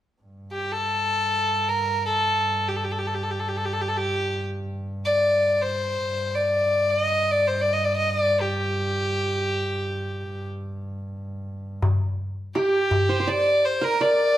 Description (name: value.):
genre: Arabic maqam ensemble.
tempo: free time.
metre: none.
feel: none.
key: G minor.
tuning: A4 = 440 Hz.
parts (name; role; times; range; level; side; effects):
clear double bass; drone; 0.2-11.9 s; G2; -32 LUFS; equal; none.
rich violin; melody; 0.5-14.4 s; G4 to Eb5; -22 LUFS; left 1 dB; none.
darbuka; percussion; 11.8-14.3 s; none; -25 LUFS; left 1 dB; none.
qanun; second line; 12.6-14.4 s; G4 to D5; -23 LUFS; right 2 dB; none.
room: wet stone room reverb, RT60 1.0 s.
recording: band playing live in one room.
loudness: -21 LUFS.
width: side -12 dB against mid.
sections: 0.2-11.8 A section; 11.8-14.4 B section.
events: none.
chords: none.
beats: free time.